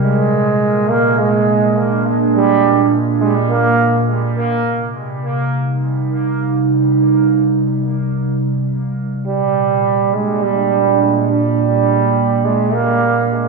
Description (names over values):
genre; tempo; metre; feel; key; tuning
ambient; free time; none; none; C minor; A4 = 442 Hz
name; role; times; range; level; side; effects
warm trombone; melody; 0.0-4.0, 9.3-13.5 s; G3 to Bb3; -16 LUFS; right 4 dB; dub echo
warbly tape-like pad; sustained chords; 0.0-13.5 s; Bb2 to Bb4; -16 LUFS; right 2 dB; chorus, built-in reverb
room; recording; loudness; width
wet lush hall reverb, RT60 2.2 s; dreamy mix soaked in reverb, small room ambience; -13 LUFS; side -3 dB against mid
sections
0.0-4.7 A section; 4.7-13.5 B section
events
none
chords
0.0 Bb7; 4.7 Cm7; 9.3 Bb